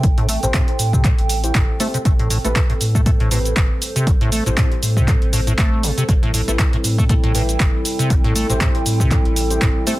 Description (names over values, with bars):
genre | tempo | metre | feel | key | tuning
acid house | 119 BPM | 4/4 | swing 56% on 16ths | A minor | A4 = 440 Hz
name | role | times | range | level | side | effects
dark analog pad | sustained chords | 0.0-10.0 s | G3 to A4 | -30 LUFS | equal | chorus, sidechain pumping
liquid acid bass | riff | 0.0-9.9 s | A2 to A3 | -22 LUFS | equal | chorus, sidechain pumping, digital delay
saturated sub bass | bass | 0.0-9.7 s | G1 to A2 | -21 LUFS | equal | sidechain pumping
electronic kick drum | drums | 0.0-9.7 s | none | -17 LUFS | equal | none
punchy analog drum machine | drums | 0.0-10.0 s | handclaps, hi-hat, shaker | -24 LUFS | right 1 dB | none
warbly tape-like pad | texture | 0.0-10.0 s | C4 to G5 | -28 LUFS | right 2 dB | chorus, built-in reverb, sidechain pumping
deep mellow chord stab | stabs | 0.4-10.0 s | C4 to C5 | -28 LUFS | left 1 dB | chorus, phaser, digital delay
room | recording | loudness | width
light reverb | dense, heavily limited modern master | -15 LUFS | side -17 dB against mid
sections
0.0-10.0 A section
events
none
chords
0.0 Am7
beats
| 0.04 0.54 1.04 1.55 | 2.05 2.56 3.06 3.56 | 4.07 4.57 5.08 5.58 | 6.09 6.59 7.09 7.60 | 8.10 8.61 9.11 9.62